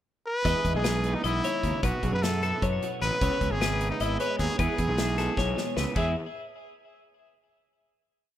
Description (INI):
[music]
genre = math rock and midwest emo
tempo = 305 BPM (eighths)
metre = 7/8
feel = straight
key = E major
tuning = A4 = 438 Hz
[part]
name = brilliant trumpet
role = melody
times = 0.3-6.1 s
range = D#4 to B4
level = -30 LUFS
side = equal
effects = digital delay
[part]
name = fuzz fingered electric bass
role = bass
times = 0.4-6.1 s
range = G#1 to F#2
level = -29 LUFS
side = equal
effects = overdrive
[part]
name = twelve-string electric guitar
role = accompaniment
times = 0.5-6.1 s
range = G#2 to G#4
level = -34 LUFS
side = right 8 dB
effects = lush chorus
[part]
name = twelve-string electric guitar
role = arpeggios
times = 0.5-6.1 s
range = E4 to D#5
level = -32 LUFS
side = left 6 dB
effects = digital delay
[part]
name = loose indie drum kit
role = drums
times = 0.5-6.1 s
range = crash cymbal, hi-hat, kick drum, snare drum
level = -32 LUFS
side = equal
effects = none
[sound]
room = small room ambience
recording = rough home demo mix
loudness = -24 LUFS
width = side -12 dB against mid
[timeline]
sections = 0.0-0.5 pickup bar; 0.5-6.0 A section; 6.0-7.3 final chord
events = drum fill 5.4-6.0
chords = 0.5 Emaj7; 1.8 B7sus4; 3.2 C#m7; 4.6 E